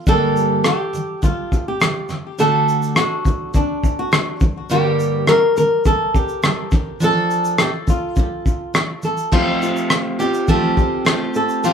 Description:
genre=acoustic pop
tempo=104 BPM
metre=4/4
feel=straight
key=G minor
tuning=A4 = 439 Hz
part: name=picked steel-string acoustic guitar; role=accompaniment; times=0.0-11.7 s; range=G2 to A4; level=-21 LUFS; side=right 1 dB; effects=none
part: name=flamenco guitar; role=melody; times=0.1-11.7 s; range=D4 to Bb4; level=-20 LUFS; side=equal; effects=ping-pong delay
part: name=cloth-damped thuddy drum kit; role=drums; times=0.1-11.7 s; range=crash cymbal, kick drum, rim click, shaker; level=-18 LUFS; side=equal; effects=none
room=moderate studio reverb, RT60 0.5 s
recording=band playing live in one room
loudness=-15 LUFS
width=side -7 dB against mid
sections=0.0-9.3 A section; 9.3-11.7 B section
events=none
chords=0.1 Gmadd9; 2.4 D; 4.4 Gmadd9; 6.7 Dm/F; 8.2 F; 9.3 Fadd9

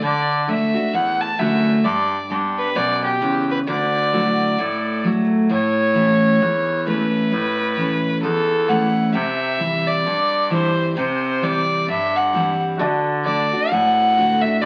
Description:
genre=honky-tonk and classic country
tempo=132 BPM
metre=4/4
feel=swing 61% on 8ths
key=D major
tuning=A4 = 440 Hz
part: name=rich fiddle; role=melody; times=0.0-14.7 s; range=G4 to A5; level=-22 LUFS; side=equal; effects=none
part: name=picked steel-string acoustic guitar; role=accompaniment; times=0.0-14.7 s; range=E2 to G4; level=-24 LUFS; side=equal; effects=none
part: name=raspy baritone saxophone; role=bass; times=0.0-14.7 s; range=D2 to D3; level=-27 LUFS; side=equal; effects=none
part: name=bright upright piano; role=accompaniment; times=12.8-14.7 s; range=F#4 to D5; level=-28 LUFS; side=equal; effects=none
room=wet studio reverb, RT60 0.8 s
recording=very old 78 rpm record, vinyl crackle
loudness=-19 LUFS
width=mono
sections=0.0-5.5 A section; 5.5-14.7 A section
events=none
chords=0.0 D; 1.8 G; 3.7 Dadd9; 5.5 A; 9.1 C; 12.8 D

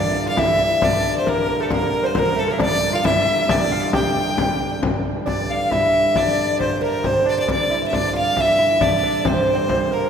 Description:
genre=medieval dance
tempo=135 BPM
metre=3/4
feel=straight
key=G dorian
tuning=A4 = 442 Hz
part: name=clear fiddle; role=melody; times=0.0-10.1 s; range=A4 to G5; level=-20 LUFS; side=equal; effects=none
part: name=breathy tenor recorder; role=second line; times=0.0-10.1 s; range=A4 to A5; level=-25 LUFS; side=left 2 dB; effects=none
part: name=lute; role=second line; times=0.0-10.1 s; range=A3 to G4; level=-26 LUFS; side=right 5 dB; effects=none
part: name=pedal harmonium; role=drone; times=0.0-10.1 s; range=G2 to D3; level=-26 LUFS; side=right 2 dB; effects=none
part: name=frame drum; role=percussion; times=0.4-9.9 s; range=none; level=-23 LUFS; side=left 2 dB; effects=none
room=wet church reverb, RT60 3.2 s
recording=recorded in a church or concert hall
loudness=-17 LUFS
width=side -7 dB against mid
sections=0.0-5.3 A section; 5.3-10.1 B section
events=none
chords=none

